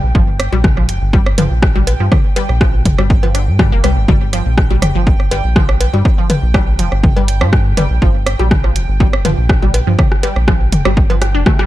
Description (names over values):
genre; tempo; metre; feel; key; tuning
minimal techno; 122 BPM; 4/4; straight; G minor; A4 = 441 Hz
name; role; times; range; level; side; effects
round analog bass; bass; 0.0-11.4 s; F1 to G2; -16 LUFS; equal; sidechain pumping
pulsing gated texture; texture; 0.0-11.7 s; G5; -27 LUFS; right 3 dB; chorus, built-in reverb, sidechain pumping
resonant blip pluck; riff; 0.1-11.6 s; D3 to D4; -22 LUFS; equal; chorus, phaser, sidechain pumping, ping-pong delay
electronic kick drum; drums; 0.1-11.6 s; none; -14 LUFS; equal; overdrive
punchy analog drum machine; drums; 0.4-11.7 s; hi-hat, rim click; -22 LUFS; equal; overdrive
garage drum kit; percussion; 0.4-11.6 s; cowbell, rim click, toms; -19 LUFS; equal; overdrive, tape echo
room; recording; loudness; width
little or no reverb; dark, warm production; -11 LUFS; side -15 dB against mid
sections
0.0-11.7 A section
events
drum fill 11.2-11.7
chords
0.0 Gm